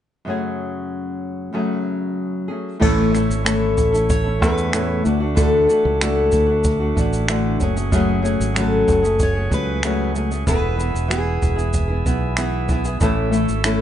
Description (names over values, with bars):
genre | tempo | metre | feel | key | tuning
acoustic pop | 94 BPM | 4/4 | straight | F# minor | A4 = 441 Hz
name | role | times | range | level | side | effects
flamenco guitar | accompaniment | 0.2-13.8 s | F#2 to A4 | -22 LUFS | left 1 dB | none
tonewheel organ | sustained chords | 2.8-13.8 s | A3 to E6 | -32 LUFS | right 3 dB | overdrive, stopped rotary speaker
fingered electric bass | bass | 2.8-13.8 s | E1 to E2 | -22 LUFS | right 1 dB | none
jazz brush drum kit | drums | 2.8-13.8 s | crash cymbal, finger snaps, kick drum, shaker | -22 LUFS | right 1 dB | none
picked steel-string acoustic guitar | melody | 3.5-13.8 s | G#4 to C#5 | -21 LUFS | left 2 dB | plate reverb
room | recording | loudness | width
light reverb | nothing above 10.4 kHz | -17 LUFS | side -10 dB against mid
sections
0.3-2.8 A section; 2.8-13.8 B section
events
none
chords
0.3 F#madd9; 2.8 A; 5.1 Dadd9; 7.6 F#madd9; 10.5 E; 13.0 A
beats
| 0.27 0.91 1.54 2.18 | 2.82 3.46 4.10 4.74 | 5.37 6.01 6.65 7.28 | 7.92 8.56 9.19 9.83 | 10.46 11.10 11.74 12.37 | 13.01 13.65